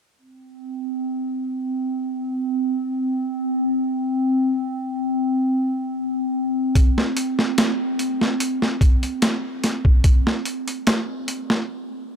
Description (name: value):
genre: trip hop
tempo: 73 BPM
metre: 4/4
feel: straight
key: unclear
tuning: A4 = 439 Hz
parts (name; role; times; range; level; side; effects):
- warbly tape-like pad; sustained chords; 0.6-12.2 s; C4; -23 LUFS; equal; chorus, built-in reverb, vintage 12-bit sampler grit
- boom bap sampler-style drum kit; drums; 6.8-11.7 s; hi-hat, kick drum, snare drum; -18 LUFS; equal; none
room: light reverb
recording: none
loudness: -19 LUFS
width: side -7 dB against mid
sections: 0.2-12.2 A section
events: break 11.7-12.2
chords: none